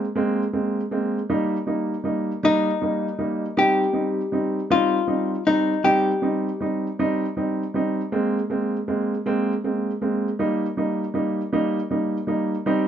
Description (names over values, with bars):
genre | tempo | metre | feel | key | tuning
pop | 53 BPM (dotted quarters) | 6/8 | straight | unclear | A4 = 438 Hz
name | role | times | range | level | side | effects
warm baby grand piano | accompaniment | 0.0-12.9 s | G3 to Eb4 | -22 LUFS | right 1 dB | none
archtop guitar, miked and amplified | melody | 2.4-6.7 s | Eb4 to G4 | -21 LUFS | left 3 dB | none
room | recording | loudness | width
moderate studio reverb, RT60 0.6 s | band playing live in one room, nothing above 7.5 kHz | -21 LUFS | side -9 dB against mid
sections
0.0-12.7 A section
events
none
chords
0.0 Abadd9; 1.3 Eb/G; 3.6 Cm; 8.1 Abadd9; 10.4 Eb/G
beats
0.16 | 1.30 2.43 | 3.57 4.70 | 5.84 6.98 | 8.11 9.25 | 10.39 11.53 | 12.66